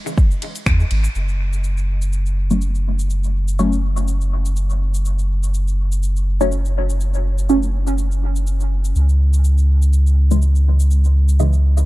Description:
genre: dub techno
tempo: 123 BPM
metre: 4/4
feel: swing 55% on 16ths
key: unclear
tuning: A4 = 440 Hz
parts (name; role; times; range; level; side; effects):
- deep house drum kit; drums; 0.1-11.9 s; finger snaps, hi-hat, ride cymbal, shaker; -31 LUFS; left 1 dB; dub echo
- electronic kick drum; drums; 0.2-0.8 s; none; -14 LUFS; equal; none
- soft dub sub bass; bass; 0.7-11.9 s; F#1 to E2; -16 LUFS; equal; sidechain pumping
- filtered dub chord stab; stabs; 2.5-11.6 s; C#3 to C#4; -23 LUFS; equal; phaser, sidechain pumping, dub echo
room: little or no reverb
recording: dark, warm production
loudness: -15 LUFS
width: side -18 dB against mid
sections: 0.0-1.2 A section; 1.2-11.9 B section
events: band accent 0.7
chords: 0.0 C#m (rootless); 1.2 N.C.

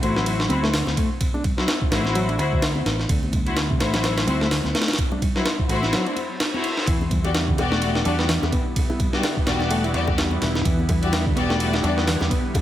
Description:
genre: breakbeat, breaks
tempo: 127 BPM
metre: 4/4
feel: swing 57% on 16ths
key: unclear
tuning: A4 = 439 Hz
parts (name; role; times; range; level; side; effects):
- barky reed electric piano; riff; 0.0-12.4 s; C3 to E4; -28 LUFS; equal; overdrive, fast tremolo, analog delay
- bright studio string section; stabs; 0.0-12.0 s; E4 to D5; -27 LUFS; left 4 dB; low-pass filter, analog delay
- fingered electric bass; bass; 0.0-12.3 s; E1 to E2; -25 LUFS; equal; none
- breakbeat sampler-style drum kit; drums; 0.0-12.6 s; hi-hat, kick drum, ride cymbal, snare drum; -23 LUFS; equal; none
- congas and bongos; percussion; 0.2-12.6 s; none; -32 LUFS; left 2 dB; analog delay
- reverse cymbal; sound effects; 6.2-6.9 s; none; -32 LUFS; right 1 dB; none
- lush unison pad; sustained chords; 6.9-12.6 s; D3 to E4; -29 LUFS; right 1 dB; chorus, sidechain pumping
room: light reverb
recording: echo-heavy mix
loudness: -19 LUFS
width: side -12 dB against mid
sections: 0.0-12.6 A section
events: reverse cymbal 6.2-6.9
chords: 0.0 D7; 6.9 Em7

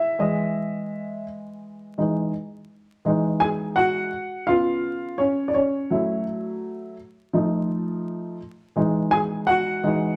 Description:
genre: hip hop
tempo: 84 BPM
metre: 4/4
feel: swing 61% on 16ths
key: E major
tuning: A4 = 440 Hz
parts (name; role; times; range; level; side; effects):
- dark upright piano; solo; 0.0-10.2 s; C#3 to G#5; -24 LUFS; equal; none
room: moderate large studio reverb, RT60 1.1 s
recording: vinyl crackle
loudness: -24 LUFS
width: mono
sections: 0.0-3.1 A section; 3.1-10.2 B section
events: upright piano solo 0.0-3.1, 3.1-10.2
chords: 0.0 Emaj9; 4.5 C#7; 5.9 F#m7; 7.3 F7; 8.8 Emaj7

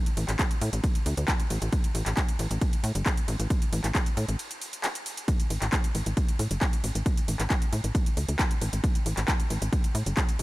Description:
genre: driving peak-time techno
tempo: 135 BPM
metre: 4/4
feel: straight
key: unclear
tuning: A4 = 440 Hz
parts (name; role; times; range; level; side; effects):
- techno drum kit; drums; 0.1-10.4 s; handclaps, hi-hat, ride cymbal; -32 LUFS; equal; overdrive, sidechain pumping on hats, sidechain pumping on cymbals
- tight sequencer bass; bass; 0.2-10.4 s; G1 to A2; -28 LUFS; equal; sidechain pumping
- electronic kick drum; drums; 0.4-10.3 s; none; -26 LUFS; equal; overdrive
room: little or no reverb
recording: none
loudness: -25 LUFS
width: side -18 dB against mid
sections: 0.0-10.4 A section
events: break 4.4-5.3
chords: none

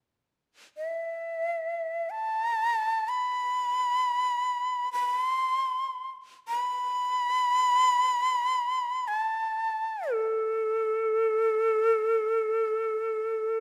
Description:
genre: japanese traditional, Japanese chamber music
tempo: free time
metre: none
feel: none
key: A hirajoshi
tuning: A4 = 440 Hz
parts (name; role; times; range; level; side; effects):
- breathy bright shakuhachi; solo; 0.8-13.6 s; A4 to C6; -28 LUFS; equal; none
room: light reverb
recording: none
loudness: -28 LUFS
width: mono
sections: 0.0-13.6 A section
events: none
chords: none

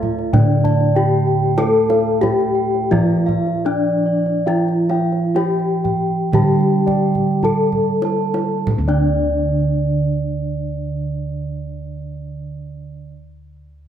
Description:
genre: Javanese gamelan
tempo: 45-97 BPM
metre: 4/4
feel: straight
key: unclear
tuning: A4 = 440 Hz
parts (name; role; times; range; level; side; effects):
- gamelan-type bronze metallophone; melody; 0.0-13.1 s; D4 to A4; -21 LUFS; left 4 dB; none
- gamelan-type bronze metallophone; accompaniment; 0.0-13.1 s; D3 to A3; -22 LUFS; right 3 dB; none
- gamelan-type bossed gongs; arpeggios; 0.0-13.1 s; D5 to A5; -28 LUFS; left 6 dB; none
- gamelan-type bronze metallophone; arpeggios; 0.0-13.1 s; D5 to A5; -25 LUFS; right 4 dB; none
- gamelan-type bossed gongs; bass; 0.0-13.0 s; D2 to A4; -22 LUFS; right 1 dB; none
- kendang; percussion; 0.0-9.3 s; none; -24 LUFS; right 2 dB; none
room: moderate concert hall reverb, RT60 1.9 s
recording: none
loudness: -15 LUFS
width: side -9 dB against mid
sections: 0.0-8.7 A section; 8.7-13.9 B section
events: slowing down 1.6-8.7; drum fill 7.1-8.7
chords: none

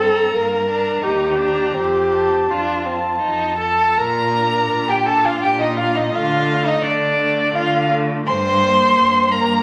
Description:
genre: classical, slow romantic movement for string quartet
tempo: 83 BPM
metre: 3/4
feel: uneven beats, rubato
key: Bb major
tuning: A4 = 440 Hz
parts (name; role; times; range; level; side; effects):
- dark violin; melody; 0.0-9.6 s; D5 to C6; -21 LUFS; equal; none
- warm violin; second line; 0.0-9.6 s; Bb3 to C5; -25 LUFS; equal; none
- rich viola; accompaniment; 0.0-9.6 s; A3 to Bb4; -23 LUFS; equal; none
- rich cello; bass; 0.0-9.6 s; Eb2 to D3; -27 LUFS; equal; none
room: wet recital hall reverb, RT60 1.4 s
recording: vinyl crackle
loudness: -18 LUFS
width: mono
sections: 0.0-4.0 A section; 4.0-9.6 B section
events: none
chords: 0.0 Gmadd9; 1.0 Eb; 1.8 F; 4.0 Bb; 6.1 D5; 8.3 Gm

